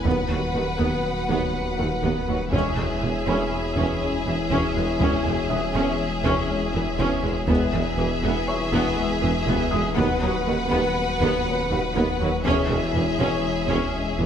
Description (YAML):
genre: cinematic, hybrid orchestral and electronic film score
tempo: 121 BPM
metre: 5/4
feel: straight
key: C# minor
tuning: A4 = 440 Hz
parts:
  - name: warm symphonic violin section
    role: melody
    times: 0.0-14.3 s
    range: E5 to F#5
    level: -31 LUFS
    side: left 2 dB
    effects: none
  - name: clear symphonic violin section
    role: second line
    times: 0.0-14.3 s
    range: G#4 to B4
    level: -30 LUFS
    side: left 2 dB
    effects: none
  - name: rich studio viola section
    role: accompaniment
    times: 0.0-14.3 s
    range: D#3 to C#4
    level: -28 LUFS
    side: right 1 dB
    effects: none
  - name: dark analog pad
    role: sustained chords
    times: 0.0-14.3 s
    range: D#3 to C#5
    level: -29 LUFS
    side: left 2 dB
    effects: wide subtle chorus
  - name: rich symphonic cello section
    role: bass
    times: 0.0-14.3 s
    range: D#2 to E2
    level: -31 LUFS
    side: right 2 dB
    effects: none
  - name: rich symphonic double bass section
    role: bass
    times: 0.0-14.3 s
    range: E1 to D#2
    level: -31 LUFS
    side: right 3 dB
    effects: none
  - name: swelling detuned saw bass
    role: bass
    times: 0.0-14.3 s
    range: D#1 to E1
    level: -31 LUFS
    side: equal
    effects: none
  - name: taiko ensemble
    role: drums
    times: 0.0-14.2 s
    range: none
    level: -31 LUFS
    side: equal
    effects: none
  - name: felt-muted upright piano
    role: texture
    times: 0.0-12.5 s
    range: B4 to D#6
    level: -36 LUFS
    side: left 2 dB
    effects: tape echo
  - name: mellow French horn section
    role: sustained chords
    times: 0.1-14.1 s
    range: F#3 to C#4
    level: -33 LUFS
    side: left 4 dB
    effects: none
  - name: clear tuba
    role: bass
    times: 0.1-14.3 s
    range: E1 to D#2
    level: -31 LUFS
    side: right 3 dB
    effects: none
room: moderate scoring stage reverb, RT60 1.9 s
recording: none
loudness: -21 LUFS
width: side -8 dB against mid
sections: 0.0-14.3 A section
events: none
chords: 0.1 B/D#; 2.5 C#m/E; 10.0 B/D#; 12.4 C#m/E